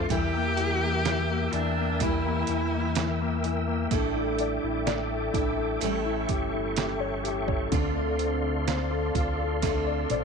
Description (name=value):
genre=pop ballad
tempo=63 BPM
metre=4/4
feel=straight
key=D minor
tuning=A4 = 440 Hz
part: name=warm cello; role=melody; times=0.0-3.4 s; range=D4 to G4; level=-30 LUFS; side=left 1 dB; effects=tape echo
part: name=clear concert grand piano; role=accompaniment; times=0.0-10.2 s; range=D3 to D5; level=-30 LUFS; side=left 14 dB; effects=none
part: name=tonewheel organ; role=sustained chords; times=0.0-10.2 s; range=A4 to E6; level=-33 LUFS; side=right 1 dB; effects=overdrive, chorus vibrato, fast rotary speaker
part: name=picked steel-string acoustic guitar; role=arpeggios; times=0.0-10.2 s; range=A2 to Bb4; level=-34 LUFS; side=right 14 dB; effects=none
part: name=sub bass with octave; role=bass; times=0.0-10.2 s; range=G1 to E2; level=-31 LUFS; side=right 1 dB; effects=none
part: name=trip hop sampler-style drum kit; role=drums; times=0.1-10.2 s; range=hi-hat, kick drum, snare drum, toms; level=-31 LUFS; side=right 5 dB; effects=none
room=light reverb, small room ambience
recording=1960s-style stereo with parts hard left and right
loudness=-25 LUFS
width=side -5 dB against mid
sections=0.0-10.2 A section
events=drum fill 9.6-10.2; grand piano fill 9.6-10.2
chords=0.1 Edim; 3.9 A7sus4; 5.8 A7; 7.7 Dm7